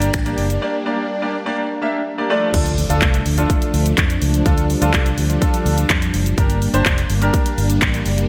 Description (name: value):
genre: dance-pop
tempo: 125 BPM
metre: 4/4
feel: straight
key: D minor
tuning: A4 = 442 Hz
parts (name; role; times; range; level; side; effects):
- clear baby grand piano; accompaniment; 0.0-7.7 s; A3 to E5; -24 LUFS; equal; analog chorus, sidechain pumping
- string machine, violas; sustained chords; 0.0-8.3 s; F3 to D4; -26 LUFS; equal; ensemble chorus, sidechain pumping
- vintage muted fingered electric bass; bass; 0.0-8.2 s; F1 to F2; -21 LUFS; equal; sidechain pumping
- house drum kit; drums; 0.0-8.3 s; crash cymbal, finger snaps, handclaps, hi-hat, kick drum, shaker; -21 LUFS; equal; none
- swell and impact; sound effects; 0.5-4.5 s; none; -33 LUFS; equal; none
room: moderate lush hall reverb, RT60 1.8 s, digital ambience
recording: dreamy mix soaked in reverb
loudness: -18 LUFS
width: mono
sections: 0.0-2.5 A section; 2.5-8.3 B section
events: impact 2.5-4.5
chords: 0.0 Gm; 2.3 Dm; 6.4 Gm